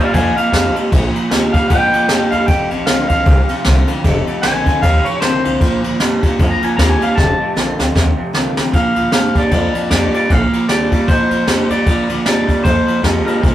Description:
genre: rockabilly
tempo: 154 BPM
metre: 4/4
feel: swing 58% on 8ths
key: Bb mixolydian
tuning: A4 = 440 Hz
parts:
  - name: electric guitar through a small old amp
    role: melody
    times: 0.0-13.5 s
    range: Bb4 to Bb5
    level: -18 LUFS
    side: equal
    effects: none
  - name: picked steel-string acoustic guitar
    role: accompaniment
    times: 0.0-13.5 s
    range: F2 to F4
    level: -24 LUFS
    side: left 3 dB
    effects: none
  - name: electric guitar through a small old amp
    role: riff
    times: 0.0-13.5 s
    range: F2 to G3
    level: -18 LUFS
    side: right 2 dB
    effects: none
  - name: upright bass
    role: bass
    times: 0.0-13.5 s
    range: F1 to Ab2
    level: -19 LUFS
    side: equal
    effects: none
  - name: jazz brush drum kit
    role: drums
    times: 0.1-13.5 s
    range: kick drum, ride cymbal, snare drum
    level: -16 LUFS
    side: equal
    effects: none
room: moderate studio reverb, RT60 0.6 s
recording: rough rehearsal-room recording, warm saturation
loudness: -12 LUFS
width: side -12 dB against mid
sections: 0.0-8.7 A section; 8.7-13.5 B section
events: clean electric guitar solo 0.0-8.7; drum fill 7.2-8.7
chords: 0.0 Bb7; 2.5 F7; 5.6 Bb7; 7.2 F7; 8.7 Bb7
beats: 0.14 0.53 | 0.92 1.31 1.70 2.10 | 2.49 2.88 3.27 3.66 | 4.05 4.44 4.83 5.22 | 5.61 6.00 6.39 6.79 | 7.18 7.57 7.96 8.35 | 8.74 9.13 9.52 9.91 | 10.30 10.69 11.08 11.47 | 11.87 12.26 12.65 13.04 | 13.43

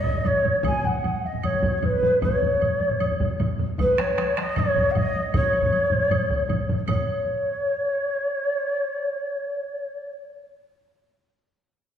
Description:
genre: japanese traditional, taiko drum ensemble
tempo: 155 BPM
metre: 4/4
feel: straight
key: C# suspended pentatonic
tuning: A4 = 444 Hz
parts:
  - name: mellow hollow shakuhachi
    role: melody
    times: 0.0-10.1 s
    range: B4 to G#5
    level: -23 LUFS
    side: equal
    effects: none
  - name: solo taiko drums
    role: percussion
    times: 0.0-7.2 s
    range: none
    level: -29 LUFS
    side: right 4 dB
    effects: none
  - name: taiko ensemble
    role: percussion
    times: 0.0-7.1 s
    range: none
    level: -31 LUFS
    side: equal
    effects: none
  - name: taiko ensemble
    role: percussion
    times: 0.1-7.2 s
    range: none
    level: -29 LUFS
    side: left 3 dB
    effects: none
  - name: solo taiko drums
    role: percussion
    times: 0.2-7.1 s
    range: none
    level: -32 LUFS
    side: left 3 dB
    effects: none
  - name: woodblock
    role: percussion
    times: 0.2-7.1 s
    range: none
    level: -38 LUFS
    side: right 5 dB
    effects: none
room: wet scoring stage reverb, RT60 1.6 s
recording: heard from further back in the room, lossy compression artefacts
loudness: -21 LUFS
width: side -9 dB against mid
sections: 0.0-6.9 A section; 6.9-9.9 B section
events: speeding up 0.0-9.9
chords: none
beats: 0.25 | 0.65 1.04 1.44 1.83 | 2.23 2.62 3.01 3.40 | 3.79 4.18 4.57 4.95 | 5.34 5.73 6.11 6.49 | 6.88 7.26 7.64 8.02 | 8.40 8.78 9.16 9.54

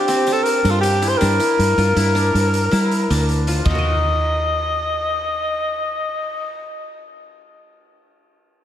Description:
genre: progressive instrumental, band music in an uneven meter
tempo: 159 BPM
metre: 7/4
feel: straight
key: unclear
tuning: A4 = 441 Hz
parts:
  - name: breathy tenor saxophone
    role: melody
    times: 0.0-6.7 s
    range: F4 to Eb5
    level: -20 LUFS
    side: left 1 dB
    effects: slapback echo, digital delay
  - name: qanun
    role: arpeggios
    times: 0.0-6.8 s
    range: C4 to Eb5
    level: -23 LUFS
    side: equal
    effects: slapback echo
  - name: raw garage drum kit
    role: drums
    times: 0.1-3.7 s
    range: hi-hat, kick drum, ride cymbal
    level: -28 LUFS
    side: equal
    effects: none
  - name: fingered electric bass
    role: bass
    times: 0.6-6.7 s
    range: D2 to G3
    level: -19 LUFS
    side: equal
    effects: none
room: wet recital hall reverb, RT60 1.5 s, studio reverb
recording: big arena sound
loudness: -16 LUFS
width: side -10 dB against mid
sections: 0.0-3.8 A section; 3.8-6.5 B section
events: none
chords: 0.0 Gm; 3.7 Ebm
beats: 0.08 0.46 0.83 | 1.21 1.58 1.96 2.33 2.71 3.09 3.46 | 3.84 4.22 4.59 4.97 5.35 5.72 6.10

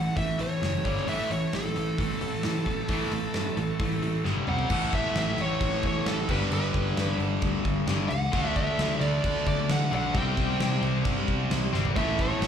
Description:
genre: hard rock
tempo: 132 BPM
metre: 4/4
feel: straight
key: unclear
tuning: A4 = 437 Hz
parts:
  - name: high-gain lead guitar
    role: melody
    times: 0.0-12.5 s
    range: A4 to G5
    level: -31 LUFS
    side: equal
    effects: distortion, slapback echo
  - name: cranked stack guitar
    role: riff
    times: 0.0-12.5 s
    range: G2 to D4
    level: -32 LUFS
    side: left 10 dB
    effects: overdrive, spring reverb, slapback echo
  - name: distorted electric guitar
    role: riff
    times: 0.0-4.3, 12.0-12.5 s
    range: A2 to A3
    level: -35 LUFS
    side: right 1 dB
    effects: distortion, slapback echo
  - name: sludgy distorted guitar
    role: riff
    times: 0.0-12.5 s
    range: G2 to D4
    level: -32 LUFS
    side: right 11 dB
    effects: overdrive, slapback echo
  - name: picked electric bass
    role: bass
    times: 0.0-12.5 s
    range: F#1 to D3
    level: -31 LUFS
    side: equal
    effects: none
  - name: huge arena drum kit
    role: drums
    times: 0.2-12.5 s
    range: crash cymbal, hi-hat, kick drum, snare drum, toms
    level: -31 LUFS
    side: equal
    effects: none
room: light reverb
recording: live gig heard through the venue's PA, club reverb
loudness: -24 LUFS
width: side -8 dB against mid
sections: 0.0-4.7 A section; 4.7-12.5 B section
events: drum fill 4.3-4.7, 11.7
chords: 0.0 A; 0.8 G5; 1.1 A5; 4.3 G5; 4.5 C5; 4.7 A; 6.3 G; 8.3 D5; 10.1 C5; 12.0 A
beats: 0.17 0.62 | 1.08 1.53 1.98 2.44 | 2.89 3.35 3.80 4.25 | 4.71 5.16 5.61 6.07 | 6.52 6.97 7.42 7.88 | 8.33 8.78 9.24 9.69 | 10.14 10.60 11.05 11.51 | 11.96 12.42

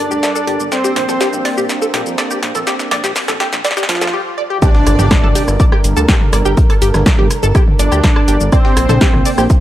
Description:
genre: melodic techno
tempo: 123 BPM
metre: 4/4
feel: straight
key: G minor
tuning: A4 = 440 Hz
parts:
  - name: wide unison lead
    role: melody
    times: 0.0-9.4 s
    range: F3 to D4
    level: -20 LUFS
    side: equal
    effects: digital delay
  - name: soft supersaw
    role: second line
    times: 0.0-9.4 s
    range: F4 to D5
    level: -23 LUFS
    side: right 1 dB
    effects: sidechain pumping, digital delay
  - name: warm analog pad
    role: sustained chords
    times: 0.0-9.6 s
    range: G3 to Bb4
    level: -23 LUFS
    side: right 1 dB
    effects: chorus, vintage 12-bit sampler grit, sidechain pumping
  - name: tight sequenced synth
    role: arpeggios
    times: 0.0-9.5 s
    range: G4 to D6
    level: -20 LUFS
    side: equal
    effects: chorus, phaser, sidechain pumping, digital delay
  - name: fat analog bass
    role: bass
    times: 0.0-9.5 s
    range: G1 to F2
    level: -17 LUFS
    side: equal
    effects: sidechain pumping
  - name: analog drone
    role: drone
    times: 0.0-4.1 s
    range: G2 to G3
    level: -37 LUFS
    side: left 2 dB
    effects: none
  - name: techno drum kit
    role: drums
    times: 0.1-9.6 s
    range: hi-hat, rim click, shaker, snare drum, toms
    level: -18 LUFS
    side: equal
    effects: sidechain pumping on perc, high-pass filter on perc, sidechain pumping on hats, high-pass filter on hats, high-pass filter on snare, sidechain pumping on toms, high-pass filter on toms, high-pass filter on room
  - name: breakbeat sampler-style drum kit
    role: drums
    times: 0.2-9.6 s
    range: hi-hat, snare drum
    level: -30 LUFS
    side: right 1 dB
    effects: none
  - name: electronic kick drum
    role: drums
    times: 4.6-9.6 s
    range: none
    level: -12 LUFS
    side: equal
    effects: none
  - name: impact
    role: sound effects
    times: 4.6-6.6 s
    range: none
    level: -23 LUFS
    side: equal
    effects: none
room: light reverb, digital ambience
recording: high-pass filter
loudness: -11 LUFS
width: side -13 dB against mid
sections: 0.0-4.6 A section; 4.6-9.6 B section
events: build-up 0.0-4.6; drum fill 0.0-4.1; filter sweep on analog synth lead 0.0-4.6; filter sweep on analog synth pad 0.0-4.6; break 4.1-4.6; drop 4.6-9.6; impact 4.6-6.6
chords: 0.0 Gm; 0.7 Bbadd9; 4.6 Gm; 8.5 Bbadd9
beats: 0.23 | 0.72 1.21 1.70 2.18 | 2.67 3.16 3.65 4.13 | 4.62 5.11 5.60 6.08 | 6.57 7.06 7.55 8.04 | 8.52 9.01 9.50

